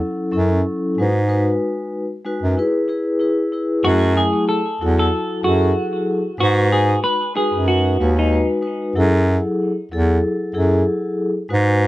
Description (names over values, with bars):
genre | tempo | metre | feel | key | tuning
hip hop, boom-bap hip-hop | 94 BPM | 4/4 | swing 54% on 16ths | F# dorian | A4 = 438 Hz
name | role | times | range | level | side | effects
vibraphone with soft mallets | accompaniment | 0.0-11.9 s | F#3 to B4 | -20 LUFS | left 1 dB | high-pass filter, low-pass filter
clear bass clarinet | bass | 0.3-11.9 s | D#2 to G#2 | -17 LUFS | right 1 dB | none
semi-hollow electric guitar | melody | 3.8-8.5 s | D#4 to B4 | -20 LUFS | equal | lush chorus, high-pass filter, low-pass filter, ping-pong delay
room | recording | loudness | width
light reverb | dark, warm production, nothing above 10.8 kHz | -16 LUFS | side -16 dB against mid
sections
0.0-3.8 A section; 3.8-11.9 B section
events
none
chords
0.0 F#m7; 1.0 G#m7; 2.6 E; 3.8 F#m9; 6.4 G#m7; 9.0 F#m9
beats
0.02 0.66 | 1.30 1.93 2.57 3.21 | 3.85 4.49 5.12 5.76 | 6.40 7.04 7.68 8.32 | 8.96 9.59 10.23 10.87 | 11.51